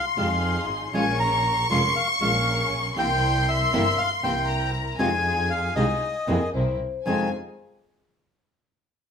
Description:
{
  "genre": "tango",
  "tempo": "118 BPM",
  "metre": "4/4",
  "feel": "rubato",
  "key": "F minor",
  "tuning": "A4 = 440 Hz",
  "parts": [
    { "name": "bandoneon", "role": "melody", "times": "0.0-7.3 s", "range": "Eb5 to C6", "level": "-26 LUFS", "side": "left 1 dB", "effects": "none" },
    { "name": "clear studio violin section", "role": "second line", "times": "0.0-7.3 s", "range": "Ab5 to Db6", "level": "-27 LUFS", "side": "left 3 dB", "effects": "none" },
    { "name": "nylon-string guitar", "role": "accompaniment", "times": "0.2-7.3 s", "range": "F2 to F4", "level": "-27 LUFS", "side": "right 1 dB", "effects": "none" },
    { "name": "dark chamber string section", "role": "stabs", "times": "0.2-7.3 s", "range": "C4 to Bb4", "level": "-33 LUFS", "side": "left 2 dB", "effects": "none" },
    { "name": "dark double bass", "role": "bass", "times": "0.2-7.3 s", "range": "F1 to F2", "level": "-28 LUFS", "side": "right 2 dB", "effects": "none" },
    { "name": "vibraphone with soft mallets", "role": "second line", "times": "6.3-7.3 s", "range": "Bb4 to C5", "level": "-30 LUFS", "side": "left 5 dB", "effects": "none" }
  ],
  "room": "moderate large studio reverb, RT60 0.9 s",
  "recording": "minimal, uncompressed stereo recording",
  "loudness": "-21 LUFS",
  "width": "side -6 dB against mid",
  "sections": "0.0-7.1 A section; 7.1-9.1 B section",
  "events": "none",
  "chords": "0.0 Fm7; 0.9 Bbm7; 3.0 C7; 5.0 Fm7; 6.5 C7; 7.1 Fm7",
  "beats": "0.44 | 0.95 1.45 1.96 2.46 | 2.96 3.47 3.98 4.48 | 4.99 5.50 6.02 6.54 | 7.06"
}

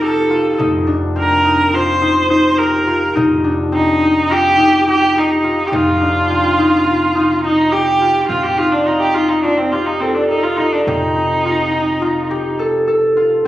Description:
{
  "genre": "contemporary instrumental, chamber music in an uneven meter",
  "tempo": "210 BPM (eighths)",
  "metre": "9/8",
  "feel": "straight",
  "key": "F mixolydian",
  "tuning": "A4 = 440 Hz",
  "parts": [
    { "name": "rich viola", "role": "melody", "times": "0.0-12.6 s", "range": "C4 to C5", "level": "-15 LUFS", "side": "right 1 dB", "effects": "none" },
    { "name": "concert harp", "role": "arpeggios", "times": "0.0-13.5 s", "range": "C4 to A4", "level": "-16 LUFS", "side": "left 1 dB", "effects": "none" },
    { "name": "upright bass", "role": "bass", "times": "0.0-13.4 s", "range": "F1", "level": "-26 LUFS", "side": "equal", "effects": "none" },
    { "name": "frame drum", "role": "percussion", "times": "0.3-13.3 s", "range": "none", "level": "-29 LUFS", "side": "equal", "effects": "none" }
  ],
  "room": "moderate recital hall reverb, RT60 1.5 s",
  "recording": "recorded on a phone in the room, studio reverb",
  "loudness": "-12 LUFS",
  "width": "side -14 dB against mid",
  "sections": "0.0-8.3 A section; 8.3-13.5 B section",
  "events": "none",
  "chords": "0.0 F7sus2; 8.3 F7",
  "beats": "0.03 0.31 | 0.60 0.88 1.17 1.45 1.74 2.02 2.31 2.59 2.88 | 3.16 3.44 3.73 4.01 4.30 4.58 4.87 5.16 5.44 | 5.72 6.01 6.30 6.58 6.87 7.15 7.44 7.72 8.01 | 8.30 8.58 8.87 9.16 9.44 9.73 10.02 10.30 10.59 | 10.88 11.16 11.45 11.74 12.03 12.31 12.60 12.89 13.17 | 13.46"
}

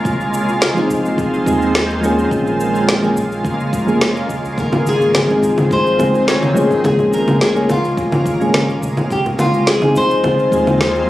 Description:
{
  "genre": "sunset chillout",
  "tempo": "106 BPM",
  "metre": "4/4",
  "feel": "straight",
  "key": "unclear",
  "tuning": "A4 = 440 Hz",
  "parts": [
    { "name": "shimmering ambient pad", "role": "sustained chords", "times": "0.0-11.1 s", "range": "Db3 to F4", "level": "-21 LUFS", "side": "equal", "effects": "chorus, built-in reverb" },
    { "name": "round analog bass", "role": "bass", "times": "0.0-11.1 s", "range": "F1 to Eb2", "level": "-27 LUFS", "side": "equal", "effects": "none" },
    { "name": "electronic kick drum", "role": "drums", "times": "0.1-10.6 s", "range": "none", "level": "-24 LUFS", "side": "equal", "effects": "none" },
    { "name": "electronic shaker, snare drum and congas", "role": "drums", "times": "0.1-11.1 s", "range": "none", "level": "-19 LUFS", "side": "equal", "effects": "none" },
    { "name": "soft electric-piano-like synth keys", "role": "accompaniment", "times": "0.7-11.1 s", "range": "F3 to Ab4", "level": "-17 LUFS", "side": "equal", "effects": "chorus, auto-pan, digital delay" },
    { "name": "flamenco guitar", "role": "melody", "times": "4.6-11.1 s", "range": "F4 to Db5", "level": "-17 LUFS", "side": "left 2 dB", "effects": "vintage 12-bit sampler grit, digital delay" },
    { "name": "congas", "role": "percussion", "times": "4.7-9.6 s", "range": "none", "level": "-25 LUFS", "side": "right 1 dB", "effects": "none" }
  ],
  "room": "moderate plate reverb, RT60 2.3 s",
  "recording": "recorded on a phone in the room, studio reverb",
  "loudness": "-13 LUFS",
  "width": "side -15 dB against mid",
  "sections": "0.0-11.1 A section",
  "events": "none",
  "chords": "0.1 Fm7/C; 2.3 Bbm7; 4.6 Ab6; 6.6 Db6; 9.1 Fm7/C",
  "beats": "| 0.05 0.62 1.18 1.75 | 2.32 2.88 3.45 4.01 | 4.58 5.15 5.71 6.28 | 6.84 7.41 7.98 8.54 | 9.11 9.68 10.24 10.81"
}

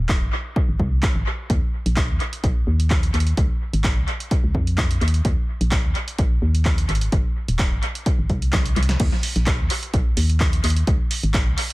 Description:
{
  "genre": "piano house",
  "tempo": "128 BPM",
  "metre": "4/4",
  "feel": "swing 54% on 16ths",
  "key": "unclear",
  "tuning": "A4 = 441 Hz",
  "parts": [
    { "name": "organ-like FM bass", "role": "bass", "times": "0.0-11.6 s", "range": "Eb1 to F2", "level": "-21 LUFS", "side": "equal", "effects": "sidechain pumping" },
    { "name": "electronic kick drum", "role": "drums", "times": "0.1-11.4 s", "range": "none", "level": "-21 LUFS", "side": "equal", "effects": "none" },
    { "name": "punchy analog drum machine", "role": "drums", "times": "0.1-11.7 s", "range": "crash cymbal, handclaps, hi-hat, snare drum", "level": "-27 LUFS", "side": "right 1 dB", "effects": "analog delay" }
  ],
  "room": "digital ambience",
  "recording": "echo-heavy mix",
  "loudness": "-18 LUFS",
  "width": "side -20 dB against mid",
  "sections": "0.0-11.7 A section",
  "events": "drum fill 8.5-9.0",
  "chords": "none",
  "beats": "0.09 0.56 1.03 | 1.50 1.97 2.44 2.91 | 3.37 3.84 4.31 4.78 | 5.25 5.72 6.19 6.66 | 7.12 7.59 8.06 8.53 | 9.00 9.47 9.94 10.41 | 10.87 11.34"
}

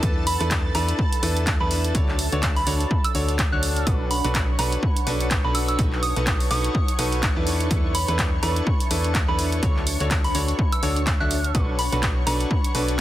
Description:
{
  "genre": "piano house",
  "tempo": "125 BPM",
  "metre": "4/4",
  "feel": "swing 57% on 16ths",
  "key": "B minor",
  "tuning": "A4 = 439 Hz",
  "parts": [
    { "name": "analog string pad", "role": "sustained chords", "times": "0.0-13.0 s", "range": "A4 to C#6", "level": "-34 LUFS", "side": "equal", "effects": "ensemble chorus, sidechain pumping" },
    { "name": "clear grand piano", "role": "riff", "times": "0.0-13.0 s", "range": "D4 to E5", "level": "-29 LUFS", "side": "equal", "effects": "sidechain pumping, tape echo" },
    { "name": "solid FM bass", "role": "bass", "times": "0.0-13.0 s", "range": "B1 to E2", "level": "-25 LUFS", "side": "equal", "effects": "sidechain pumping" },
    { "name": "electronic kick drum", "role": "drums", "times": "0.0-13.0 s", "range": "none", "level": "-24 LUFS", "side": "equal", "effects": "none" },
    { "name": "punchy analog drum machine", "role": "drums", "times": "0.0-13.0 s", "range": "handclaps, hi-hat", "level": "-28 LUFS", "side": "right 1 dB", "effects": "none" },
    { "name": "granular cloud pad", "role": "texture", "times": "0.0-13.0 s", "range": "D4 to A5", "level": "-33 LUFS", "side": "equal", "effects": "built-in reverb, sidechain pumping" },
    { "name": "soft synth bell", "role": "melody", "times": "0.3-12.7 s", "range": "B5 to F#6", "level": "-29 LUFS", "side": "right 2 dB", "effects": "chorus, tape echo" }
  ],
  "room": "digital ambience",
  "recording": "dense, heavily limited modern master",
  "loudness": "-20 LUFS",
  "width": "side -14 dB against mid",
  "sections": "0.0-13.0 A section",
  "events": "none",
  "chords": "0.0 E7sus4; 1.9 Dmaj7; 3.9 Bm7; 5.8 B7; 7.5 E7sus4; 9.6 Dmaj7; 11.5 Bm7",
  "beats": "| 0.03 0.51 0.99 1.47 | 1.95 2.43 2.91 3.39 | 3.87 4.35 4.83 5.31 | 5.79 6.27 6.75 7.23 | 7.71 8.19 8.67 9.15 | 9.63 10.11 10.59 11.07 | 11.55 12.03 12.51 12.99"
}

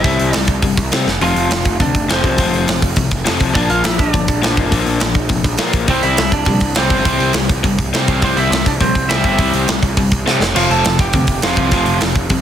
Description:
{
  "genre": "punk rock",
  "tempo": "206 BPM",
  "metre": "4/4",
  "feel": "straight",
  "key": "C mixolydian",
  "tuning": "A4 = 441 Hz",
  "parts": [
    { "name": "lightly driven lead guitar", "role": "melody", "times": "0.0-12.0 s", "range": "C4 to A5", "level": "-20 LUFS", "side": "right 3 dB", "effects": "digital delay" },
    { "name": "overdriven electric guitar", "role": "riff", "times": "0.0-12.4 s", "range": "F2 to C4", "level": "-19 LUFS", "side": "left 6 dB", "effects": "none" },
    { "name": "fuzz picked electric bass", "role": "bass", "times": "0.0-12.4 s", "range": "F1 to C3", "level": "-20 LUFS", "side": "equal", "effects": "overdrive" },
    { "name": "tight metal drum kit", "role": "drums", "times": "0.0-12.4 s", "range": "crash cymbal, hi-hat, kick drum, snare drum", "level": "-17 LUFS", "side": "right 1 dB", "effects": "soft clipping on kick, soft clipping on snare" },
    { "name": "distorted electric guitar", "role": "riff", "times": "5.9-12.4 s", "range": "F2 to C4", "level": "-22 LUFS", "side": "right 13 dB", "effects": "distortion" }
  ],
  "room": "little or no reverb",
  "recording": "dense, heavily limited modern master",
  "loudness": "-12 LUFS",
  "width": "side -10 dB against mid",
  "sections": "0.0-12.4 A section",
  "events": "drum fill 1.1, 10.3",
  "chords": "0.0 C; 1.1 F5; 3.6 Bb; 5.9 C; 10.4 F",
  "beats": "| 0.05 0.34 0.63 0.93 | 1.22 1.51 1.80 2.10 | 2.39 2.68 2.97 3.26 | 3.56 3.85 4.14 4.43 | 4.72 5.01 5.31 5.60 | 5.89 6.18 6.47 6.76 | 7.05 7.35 7.64 7.93 | 8.22 8.51 8.80 9.10 | 9.39 9.68 9.97 10.26 | 10.55 10.84 11.13 11.43 | 11.72 12.01 12.30"
}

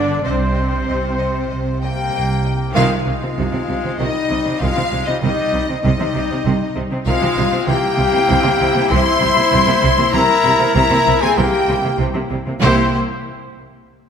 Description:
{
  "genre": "cinematic, epic orchestral film score",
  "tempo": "97 BPM",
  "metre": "4/4",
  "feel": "straight",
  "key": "C minor",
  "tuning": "A4 = 440 Hz",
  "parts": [
    { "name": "silver concert flute", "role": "second line", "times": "0.0-13.0 s", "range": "C5 to C6", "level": "-24 LUFS", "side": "left 3 dB", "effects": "none" },
    { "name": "warm symphonic violin section", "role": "second line", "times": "0.0-13.0 s", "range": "C5 to C6", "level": "-26 LUFS", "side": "left 3 dB", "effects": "none" },
    { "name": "clear symphonic viola section", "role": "accompaniment", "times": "0.0-13.0 s", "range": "Eb3 to E4", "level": "-24 LUFS", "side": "right 2 dB", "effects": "none" },
    { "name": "dark French horn section", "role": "sustained chords", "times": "0.0-12.9 s", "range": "C4 to C5", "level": "-23 LUFS", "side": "left 4 dB", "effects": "none" },
    { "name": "mellow trumpet section", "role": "stabs", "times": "0.0-12.9 s", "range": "G3 to D5", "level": "-24 LUFS", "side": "left 1 dB", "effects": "none" },
    { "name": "dark symphonic double bass section", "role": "bass", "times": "0.0-13.0 s", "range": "G1 to C2", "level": "-21 LUFS", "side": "right 3 dB", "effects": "none" },
    { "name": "rich symphonic cello section", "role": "bass", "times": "0.0-13.0 s", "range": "C3 to D3", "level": "-23 LUFS", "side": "right 2 dB", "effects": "none" },
    { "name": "warm symphonic violin section", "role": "melody", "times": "0.2-13.0 s", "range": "G4 to C6", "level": "-23 LUFS", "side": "left 5 dB", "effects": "none" }
  ],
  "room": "wet concert hall reverb, RT60 1.9 s",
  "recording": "none",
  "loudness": "-14 LUFS",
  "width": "side -7 dB against mid",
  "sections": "0.0-2.8 A section; 2.8-12.6 B section; 12.6-14.1 C section",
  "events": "band accent 2.8-3.4",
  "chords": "0.2 Cm; 7.7 C7",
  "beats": "| 0.25 0.87 1.50 2.13 | 2.76 3.38 4.00 4.61 | 5.23 5.84 6.46 7.07 | 7.68 8.29 8.91 9.53 | 10.14 10.76 11.38 11.99 | 12.62"
}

